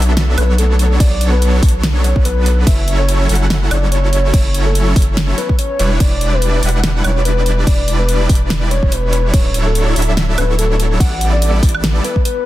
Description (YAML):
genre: future bass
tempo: 144 BPM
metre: 4/4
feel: swing 56% on 16ths, half-time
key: B minor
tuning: A4 = 440 Hz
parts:
  - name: supersaw chords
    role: riff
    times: 0.0-12.0 s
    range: F#3 to F#5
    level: -20 LUFS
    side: right 1 dB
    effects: cassette tape, sidechain pumping
  - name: saturated sub bass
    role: bass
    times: 0.0-12.0 s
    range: D1 to B1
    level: -15 LUFS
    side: equal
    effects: sidechain pumping
  - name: pop drum kit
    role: drums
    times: 0.0-12.3 s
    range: crash cymbal, hi-hat, snare drum, woodblock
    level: -22 LUFS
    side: right 1 dB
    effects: none
  - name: soft octave-layered synth lead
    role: melody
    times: 0.4-12.5 s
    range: A4 to F#5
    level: -22 LUFS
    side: left 2 dB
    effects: chorus, sidechain pumping, dub echo
  - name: electronic kick drum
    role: drums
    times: 1.0-12.2 s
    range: none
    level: -13 LUFS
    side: equal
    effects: none
room: digital ambience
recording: dense, heavily limited modern master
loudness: -12 LUFS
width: side -15 dB against mid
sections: 0.0-12.5 A section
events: break 12.3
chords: 0.0 Bm9; 2.7 F#m7; 5.8 Em7; 9.3 Dmaj9; 11.0 A9sus4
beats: 0.17 0.59 | 1.00 1.42 1.84 2.25 | 2.67 3.09 3.50 3.92 | 4.34 4.75 5.17 5.59 | 6.00 6.42 6.84 7.25 | 7.67 8.09 8.50 8.92 | 9.34 9.75 10.17 10.59 | 11.00 11.42 11.84 12.25